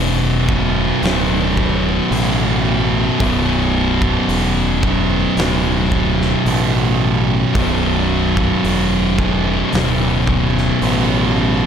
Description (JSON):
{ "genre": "stoner and doom metal", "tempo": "55 BPM", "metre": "4/4", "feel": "straight", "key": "B minor", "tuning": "A4 = 441 Hz", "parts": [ { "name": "thick fuzz guitar", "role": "riff", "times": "0.0-11.7 s", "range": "B1 to B2", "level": "-18 LUFS", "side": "left 7 dB", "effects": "distortion" }, { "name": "thick fuzz guitar", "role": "riff", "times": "0.0-11.7 s", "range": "B1 to B2", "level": "-18 LUFS", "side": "right 10 dB", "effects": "distortion" }, { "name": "growling fingered electric bass", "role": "bass", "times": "0.0-11.7 s", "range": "B0 to A1", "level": "-21 LUFS", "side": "equal", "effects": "overdrive, tube saturation" }, { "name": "big rock drum kit", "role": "drums", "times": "0.5-11.1 s", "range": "hi-hat, kick drum, snare drum", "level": "-23 LUFS", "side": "equal", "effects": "none" } ], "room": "light reverb, studio ambience", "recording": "none", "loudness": "-14 LUFS", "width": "side -8 dB against mid", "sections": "0.0-11.7 A section", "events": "none", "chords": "0.0 Bm", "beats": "1.02 2.11 | 3.20 4.29 5.37 6.46 | 7.55 8.64 9.72 10.81" }